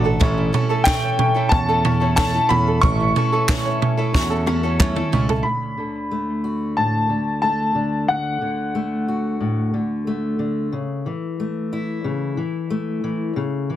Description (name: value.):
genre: indie folk with a building arrangement.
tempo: 91 BPM.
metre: 4/4.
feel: straight.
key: D major.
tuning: A4 = 440 Hz.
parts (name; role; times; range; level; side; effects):
picked old ladder-braced acoustic guitar; accompaniment; 0.0-5.5 s; A2 to A4; -26 LUFS; left 6 dB; none.
warm baby grand piano; accompaniment; 0.0-5.5 s; A1 to D5; -31 LUFS; right 4 dB; none.
ukulele; arpeggios; 0.0-5.5 s; C#4 to C#5; -26 LUFS; right 5 dB; digital delay.
picked electric bass; bass; 0.0-5.4 s; A1 to E2; -22 LUFS; equal; none.
compact cocktail drum kit; drums; 0.2-5.4 s; kick drum, snare drum, toms; -20 LUFS; right 2 dB; none.
bright upright piano; melody; 0.8-10.4 s; F#5 to C#6; -22 LUFS; left 2 dB; none.
group handclap; percussion; 0.9-5.0 s; none; -23 LUFS; right 3 dB; none.
fingerpicked steel-string acoustic guitar; accompaniment; 5.5-13.8 s; D2 to F#4; -22 LUFS; left 2 dB; none.
room: light reverb.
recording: dense, heavily limited modern master.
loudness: -18 LUFS.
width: side -12 dB against mid.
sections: 0.0-5.5 A section; 5.5-13.8 B section.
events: drum fill 4.1-5.5.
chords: 0.2 A; 5.5 D; 10.7 A/C#.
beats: | 0.21 0.86 1.51 2.17 | 2.83 3.48 4.14 4.79 | 5.45 6.11 6.77 7.43 | 8.09 8.75 9.41 10.07 | 10.73 11.39 12.04 12.71 | 13.36.